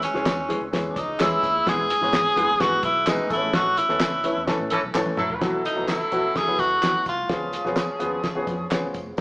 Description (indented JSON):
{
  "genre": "uptempo 1960s-style soul",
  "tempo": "128 BPM",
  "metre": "4/4",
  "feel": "straight",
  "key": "unclear",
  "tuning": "A4 = 441 Hz",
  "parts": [
    { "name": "bright tenor saxophone", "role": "melody", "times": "0.0-7.7 s", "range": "C#4 to G#4", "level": "-22 LUFS", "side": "equal", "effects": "none" },
    { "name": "glockenspiel with hard plastic mallets", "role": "second line", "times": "0.0-4.5 s", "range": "C#6 to G#6", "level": "-30 LUFS", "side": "equal", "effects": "none" },
    { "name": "vintage muted fingered electric bass", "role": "bass", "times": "0.0-9.2 s", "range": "E1 to A2", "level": "-39 LUFS", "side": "equal", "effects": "none" },
    { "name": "cloth-damped thuddy drum kit", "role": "drums", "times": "0.0-9.2 s", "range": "hi-hat, kick drum, snare drum, toms", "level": "-28 LUFS", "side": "equal", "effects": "none" },
    { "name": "congas", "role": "percussion", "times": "0.0-9.2 s", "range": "none", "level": "-41 LUFS", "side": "equal", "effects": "none" },
    { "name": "tambourine and handclaps", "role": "percussion", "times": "0.0-9.2 s", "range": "none", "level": "-35 LUFS", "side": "right 1 dB", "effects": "none" },
    { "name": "warm baby grand piano", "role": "accompaniment", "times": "0.1-9.2 s", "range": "E3 to A4", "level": "-27 LUFS", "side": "left 1 dB", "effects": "none" },
    { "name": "warm saxophone section", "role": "second line", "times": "4.5-9.2 s", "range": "E3 to A4", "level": "-28 LUFS", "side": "equal", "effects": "none" }
  ],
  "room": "wet large studio reverb, RT60 1.5 s",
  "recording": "band playing live in one room, small speaker sound",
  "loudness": "-20 LUFS",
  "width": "side -25 dB against mid",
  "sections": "0.0-5.4 A section; 5.4-9.2 B section",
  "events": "band accent 3.5-5.4; drum fill 4.9-5.4",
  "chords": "0.0 C#m; 1.7 E; 3.3 A; 5.4 Bsus4; 7.3 C#7"
}